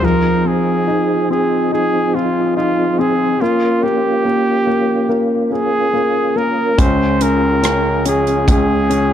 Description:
pop ballad; 71 BPM; 4/4; straight; F minor; A4 = 440 Hz
warm flugelhorn; melody; 0.0-9.1 s; F4 to C5; -17 LUFS; right 2 dB
warm concert grand piano; accompaniment; 0.0-9.1 s; F3 to Eb4; -18 LUFS; left 4 dB
tonewheel organ; sustained chords; 0.0-9.1 s; Db3 to Ab4; -21 LUFS; right 3 dB; overdrive, chorus vibrato, fast rotary speaker
warm baby grand piano; bass; 6.8-9.1 s; Db2; -20 LUFS; left 1 dB
modern studio drum kit; drums; 6.8-9.1 s; hi-hat, kick drum, rim click; -18 LUFS; right 1 dB
light reverb, small room ambience; dark, warm production; -13 LUFS; side -10 dB against mid
0.0-9.1 A section
0.0 Fm7; 3.4 Bbm; 6.8 Db

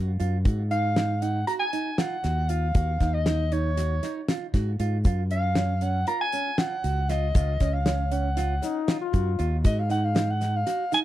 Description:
progressive instrumental, band music in an uneven meter; 235 BPM (eighths); 9/8; straight; A4 = 445 Hz
nylon-string guitar; arpeggios; 0.0-11.0 s; C#4 to F#4; -33 LUFS; right 8 dB; plate reverb, analog delay
fingered electric bass; bass; 0.0-10.6 s; C#2 to G#2; -25 LUFS; equal
damped 70s drum kit; drums; 0.2-11.0 s; hi-hat, kick drum, snare drum; -25 LUFS; left 1 dB
mellow soprano saxophone; melody; 0.7-11.0 s; C#5 to A#5; -28 LUFS; equal
tube shaker; percussion; 5.0-11.0 s; -49 LUFS; left 16 dB
clear trombone; second line; 8.6-9.5 s; D#4 to E#4; -31 LUFS; left 10 dB; plate reverb, analog delay
light reverb; dark, warm production; -23 LUFS; side -14 dB against mid
0.0-11.0 A section
soprano saxophone solo 0.0-11.0
0.5 G#5; 5.1 F#5; 9.7 G#7(no3)

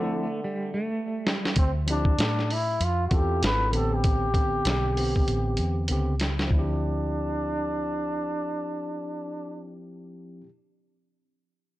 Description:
hip hop, jazz-hop; 97 BPM; 4/4; swing 60% on 16ths; D dorian; A4 = 443 Hz
clear trombone; melody; 0.0-9.8 s; D3 to B4; -29 LUFS; equal
semi-hollow electric guitar; second line; 0.0-1.5 s; G3 to A3; -32 LUFS; right 2 dB; tremolo, tape echo
tine electric piano; accompaniment; 0.0-10.5 s; D3 to A4; -33 LUFS; left 1 dB
lo-fi sampler-style drum kit; drums; 1.3-6.7 s; hi-hat, kick drum, snare drum; -26 LUFS; equal; vintage 12-bit sampler grit
vintage muted fingered electric bass; bass; 1.6-10.4 s; G#1 to A2; -28 LUFS; equal; transformer saturation
digital ambience; dry, gritty hardware recording; -24 LUFS; side -16 dB against mid
0.0-1.6 A section; 1.6-6.5 B section; 6.5-9.0 C section
break 0.0-1.6; drum fill 0.9-1.6, 5.3-6.5
0.0 Dm9; 3.7 Am11; 6.5 Dm11

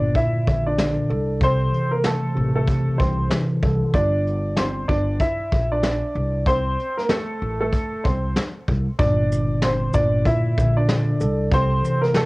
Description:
hip hop, boom-bap hip-hop; 95 BPM; 4/4; swing 62% on 16ths; G dorian; A4 = 440 Hz
warm upright piano; melody; 0.0-12.3 s; A3 to E5; -23 LUFS; equal; cassette tape
mellow tine electric piano; accompaniment; 0.0-4.0, 9.0-12.3 s; Bb2 to A4; -22 LUFS; equal; medium stereo tremolo, cassette tape
upright bass; bass; 0.0-11.8 s; G1 to C2; -25 LUFS; equal
vintage brush drum kit; drums; 0.1-12.3 s; hi-hat, kick drum, shaker, snare drum; -23 LUFS; equal; cassette tape
light reverb; home recording on cassette; -18 LUFS; side -23 dB against mid
0.0-9.0 A section; 9.0-12.3 B section
0.0 Gm (rootless); 1.1 C6; 3.9 Gm; 6.1 Am; 9.0 Gm; 11.2 C6

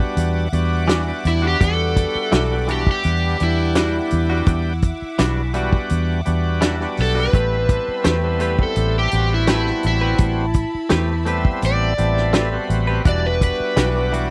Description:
straight-eighth soul blues; 84 BPM; 4/4; straight; E minor; A4 = 440 Hz
bright tonewheel organ; accompaniment; 0.0-14.3 s; G3 to G4; -28 LUFS; equal; slow rotary speaker, overdrive
rich studio string section; sustained chords; 0.0-14.3 s; E5 to D6; -35 LUFS; equal
vintage muted fingered electric bass; bass; 0.0-14.3 s; E1 to E2; -23 LUFS; equal
warm soul drum kit; drums; 0.0-14.3 s; hi-hat, kick drum, snare drum; -21 LUFS; equal
direct-recorded clean electric guitar; stabs; 0.9-14.3 s; E3 to B4; -28 LUFS; equal; spring reverb, slapback echo
overdriven slide guitar; melody; 1.3-14.1 s; E4 to D5; -25 LUFS; equal
little or no reverb; dry, close 1970s-style studio recording; -19 LUFS; mono
0.0-14.3 A section
electric slide guitar solo 0.0-14.3
0.0 Em9; 7.3 Am9; 13.1 Em9

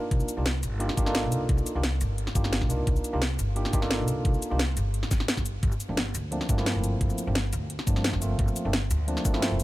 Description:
liquid drum and bass; 174 BPM; 4/4; straight; C dorian; A4 = 442 Hz
tine electric piano; accompaniment; 0.0-9.6 s; F3 to Bb4; -32 LUFS; right 1 dB; medium tremolo, dub echo
upright bass; bass; 0.1-9.6 s; G1 to G2; -28 LUFS; equal
drum and bass drum kit; drums; 0.1-9.6 s; hi-hat, shaker, snare drum; -31 LUFS; equal
electronic kick drum; drums; 0.1-9.3 s; -26 LUFS; equal
little or no reverb; -24 LUFS; side -17 dB against mid
0.0-9.6 A section
0.1 Cm11; 5.5 Gm11

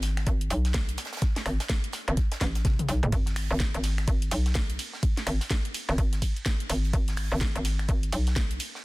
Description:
bass house; 126 BPM; 4/4; swing 61% on 16ths; G# phrygian; A4 = 440 Hz
hollow knocking FM bass; bass; 0.0-8.6 s; F#1 to B1; -27 LUFS; equal; overdrive, sidechain pumping
garage drum kit; drums; 0.0-8.7 s; finger snaps, hi-hat, ride cymbal, snare drum, toms; -33 LUFS; equal
tight funk drum kit; drums; 0.0-8.8 s; hi-hat, snare drum; -41 LUFS; right 2 dB; sidechain pumping on hats, high-pass filter on hats, high-pass filter on snare, high-pass filter on room
electronic kick drum; drums; 0.3-8.5 s; -26 LUFS; equal; overdrive
little or no reverb; dense, heavily limited modern master; -25 LUFS; side -21 dB against mid
0.0-8.8 A section
drum fill 2.4-3.1

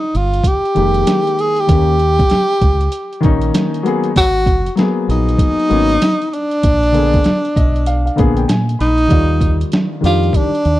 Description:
hip hop, jazz-hop; 97 BPM; 4/4; swing 62% on 16ths; Eb major; A4 = 442 Hz
breathy tenor saxophone; melody; 0.0-10.8 s; D4 to Ab4; -16 LUFS; equal
deep dub fingered electric bass; bass; 0.1-10.8 s; F1 to Bb2; -16 LUFS; equal
trip hop sampler-style drum kit; drums; 0.1-10.8 s; hi-hat, kick drum, snare drum; -16 LUFS; equal; overdrive
warm upright piano; accompaniment; 0.7-10.5 s; D3 to Cb6; -18 LUFS; left 3 dB
little or no reverb; dry, close 1970s-style studio recording; -12 LUFS; side -15 dB against mid
0.0-9.1 A section; 9.1-10.8 B section
upright piano fill 7.3-9.1
0.0 Fm11; 1.7 Eb7; 4.2 Abm9; 6.6 Bb7b9; 9.1 Ebmaj9

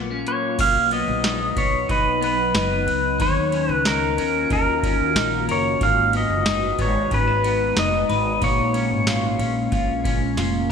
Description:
dream pop; 92 BPM; 4/4; straight; B lydian; A4 = 440 Hz
ethereal airy pad; sustained chords; 0.0-10.7 s; D#3 to A#5; -28 LUFS; equal; ensemble chorus, built-in reverb
clean electric guitar; arpeggios; 0.0-10.7 s; G#2 to B4; -26 LUFS; left 4 dB; lush chorus, ping-pong delay
upright bass; bass; 0.0-10.7 s; E#1 to D#2; -27 LUFS; right 1 dB
pedal steel guitar; melody; 0.3-10.3 s; A#4 to E#5; -21 LUFS; equal; ping-pong delay
booming analog drum machine; drums; 0.3-10.5 s; crash cymbal, hi-hat, kick drum, ride cymbal, snare drum, tambourine; -25 LUFS; right 1 dB; gated reverb
moderate plate reverb, RT60 1.9 s; bright 1980s-style digital production; -18 LUFS; side -6 dB against mid
0.6-10.7 A section
drum fill 10.4-10.7
0.0 F#maj7/A#; 0.6 Bmaj7; 3.2 D#m7; 5.8 G#m7; 8.4 A#m7

